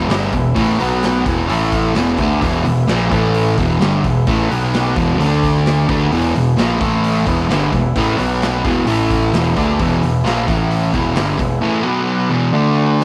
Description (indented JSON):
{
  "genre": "garage rock duo or trio",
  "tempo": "130 BPM",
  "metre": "4/4",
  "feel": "straight",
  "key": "E mixolydian",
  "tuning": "A4 = 442 Hz",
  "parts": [
    { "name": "combo organ", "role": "sustained chords", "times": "0.0-13.0 s", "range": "D4 to G#5", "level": "-29 LUFS", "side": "equal", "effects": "none" },
    { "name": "fuzz guitar", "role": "riff", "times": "0.0-13.0 s", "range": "E2 to D4", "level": "-17 LUFS", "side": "equal", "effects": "distortion" },
    { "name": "growling picked electric bass", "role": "bass", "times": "0.0-11.6 s", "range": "E1 to D2", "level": "-24 LUFS", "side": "equal", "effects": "overdrive" },
    { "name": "raw garage drum kit", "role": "drums", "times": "0.1-13.0 s", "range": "hi-hat, kick drum, snare drum", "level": "-25 LUFS", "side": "equal", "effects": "none" }
  ],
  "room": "light reverb, studio reverb",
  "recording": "none",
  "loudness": "-16 LUFS",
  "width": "mono",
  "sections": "0.0-13.0 A section",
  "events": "transistor combo organ fill 12.5-13.0",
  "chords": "0.0 E; 0.8 B5; 1.3 E5; 1.5 A5; 2.0 E; 3.1 A5; 3.6 E; 4.5 B5; 5.0 E5; 5.2 D5; 5.9 E; 6.8 A5; 7.3 E; 8.2 B5; 8.6 E5; 8.9 A5; 9.3 E; 10.5 A5; 10.9 E; 11.9 B5; 12.3 E5"
}